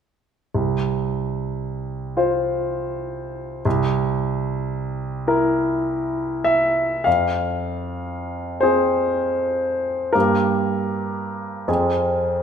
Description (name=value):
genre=classical, romantic nocturne for solo piano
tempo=31-42 BPM (dotted quarters)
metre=6/8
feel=rubato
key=F minor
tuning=A4 = 442 Hz
part: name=clear grand piano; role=solo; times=0.5-12.4 s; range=C2 to F5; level=-20 LUFS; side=equal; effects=none
room=wet recital hall reverb, RT60 1.7 s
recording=minimal, uncompressed stereo recording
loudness=-20 LUFS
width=side -7 dB against mid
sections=0.5-7.1 A section; 7.1-12.4 B section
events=none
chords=0.5 F5/C; 3.7 C7; 7.1 Fm; 10.1 Gm; 11.7 Fm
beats=| 0.54 2.17 | 3.65 5.27 | 7.06 8.63 | 10.15 11.68